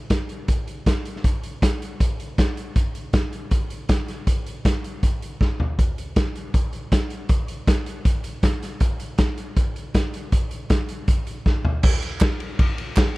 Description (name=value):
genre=rock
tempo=159 BPM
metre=4/4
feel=straight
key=none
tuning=none
part: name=raw garage drum kit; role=drums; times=0.1-13.1 s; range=crash cymbal, hi-hat, kick drum, ride cymbal, snare drum, toms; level=-20 LUFS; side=equal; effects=none
part: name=group handclap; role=percussion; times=12.2-13.1 s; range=none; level=-32 LUFS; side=right 8 dB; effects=none
room=little or no reverb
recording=dry, close 1970s-style studio recording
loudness=-20 LUFS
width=side -21 dB against mid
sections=0.0-11.8 A section; 11.8-13.2 B section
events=drum fill 5.4-5.8, 11.5-11.8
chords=none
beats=0.11 0.49 0.86 | 1.24 1.62 2.00 2.38 | 2.76 3.14 3.52 3.90 | 4.27 4.65 5.03 5.41 | 5.78 6.16 6.54 6.92 | 7.29 7.67 8.05 8.43 | 8.81 9.18 9.56 9.94 | 10.32 10.70 11.07 11.45 | 11.83 12.21 12.58 12.96